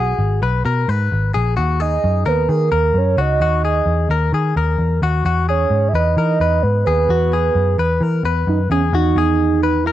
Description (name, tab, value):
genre	jangly indie pop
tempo	130 BPM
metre	4/4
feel	straight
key	unclear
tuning	A4 = 439 Hz
part	soft octave-layered synth lead	melody	0.0-9.9 s	C#4 to F#5	-19 LUFS	right 5 dB	chorus
part	direct-recorded clean electric guitar	arpeggios	0.0-9.9 s	F#4 to B4	-21 LUFS	left 8 dB	cassette tape
part	vintage muted picked electric bass	bass	0.0-9.9 s	G#1 to E3	-17 LUFS	equal	none
room	light reverb, digital ambience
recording	home recording on cassette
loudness	-14 LUFS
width	side -13 dB against mid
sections	0.0-8.9 A section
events	none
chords	0.0 G#m7; 1.6 D#m; 5.3 Emaj7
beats	0.20 0.66 1.12 | 1.58 2.04 2.50 2.96 | 3.42 3.88 4.34 4.80 | 5.26 5.72 6.18 6.64 | 7.10 7.56 8.02 8.48 | 8.94 9.40 9.86